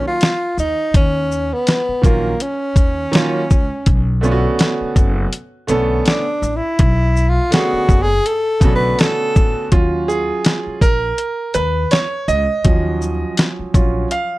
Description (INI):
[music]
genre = hip hop, jazz-hop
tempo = 82 BPM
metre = 4/4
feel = swing 58% on 16ths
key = Eb minor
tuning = A4 = 440 Hz
[part]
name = breathy tenor saxophone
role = melody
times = 0.0-9.7 s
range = Bb3 to B4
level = -19 LUFS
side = equal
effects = plate reverb
[part]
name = bright concert grand piano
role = accompaniment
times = 0.0-14.4 s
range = C#3 to F5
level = -19 LUFS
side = right 2 dB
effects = plate reverb
[part]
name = boom bap sampler-style drum kit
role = drums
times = 0.2-14.3 s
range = hi-hat, kick drum, shaker, snare drum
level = -14 LUFS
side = equal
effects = none
[part]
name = upright bass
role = bass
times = 0.6-14.0 s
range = F#1 to Eb2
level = -20 LUFS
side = equal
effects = none
[sound]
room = light reverb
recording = dark, warm production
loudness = -14 LUFS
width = side -18 dB against mid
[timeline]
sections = 0.0-9.7 A section; 9.7-14.4 A section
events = tenor saxophone solo 0.0-9.7; grand piano solo 9.7-14.4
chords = 0.0 Ebm9; 3.9 Bm9; 9.7 Ebm9